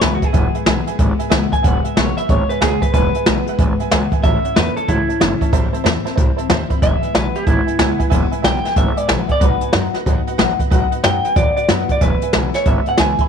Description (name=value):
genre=rockabilly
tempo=185 BPM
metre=4/4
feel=swing 64% on 8ths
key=E major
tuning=A4 = 441 Hz
part: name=electric guitar through a small old amp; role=melody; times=0.0-13.3 s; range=E4 to B5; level=-20 LUFS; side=right 2 dB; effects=tape echo
part: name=honky-tonk upright piano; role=accompaniment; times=0.0-13.3 s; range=B4 to B5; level=-26 LUFS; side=right 14 dB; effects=none
part: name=picked steel-string acoustic guitar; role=accompaniment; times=0.0-13.3 s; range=E2 to G#4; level=-24 LUFS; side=left 14 dB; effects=none
part: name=upright bass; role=bass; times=0.0-13.2 s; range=E1 to F#2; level=-21 LUFS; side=equal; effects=none
part: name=jazz brush drum kit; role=drums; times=0.0-13.2 s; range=hi-hat, kick drum, snare drum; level=-17 LUFS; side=equal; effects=none
room=small room ambience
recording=1960s-style stereo with parts hard left and right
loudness=-14 LUFS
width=side -7 dB against mid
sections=0.0-13.3 A section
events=none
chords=0.0 E; 4.2 A; 5.5 Am7; 6.8 E; 9.4 B; 12.0 E